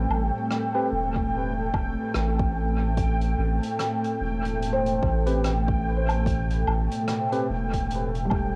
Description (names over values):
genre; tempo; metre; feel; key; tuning
ambient dub; 73 BPM; 4/4; swing 59% on 16ths; A minor; A4 = 445 Hz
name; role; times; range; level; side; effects
airy breathy pad; sustained chords; 0.0-8.6 s; A2 to G5; -31 LUFS; equal; chorus, cassette tape
felt-muted upright piano; arpeggios; 0.0-8.6 s; G3 to C5; -36 LUFS; equal; cassette tape, tape echo
soft dub sub bass; bass; 0.0-8.5 s; E1 to A1; -28 LUFS; equal; none
bubbling stepped-filter texture; texture; 0.0-8.6 s; G5; -35 LUFS; equal; chorus, built-in reverb, cassette tape
soft-mallet drum kit; drums; 0.1-8.5 s; hi-hat, rim click, woodblock; -37 LUFS; equal; cassette tape, dub echo
barky tine electric piano; stabs; 0.7-7.5 s; C4 to B4; -35 LUFS; equal; cassette tape, dub echo
electronic kick drum; drums; 1.2-8.5 s; none; -31 LUFS; equal; overdrive, cassette tape
room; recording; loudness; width
moderate spring reverb, RT60 2.3 s; home recording on cassette; -25 LUFS; mono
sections
0.0-8.6 A section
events
none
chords
0.0 Am9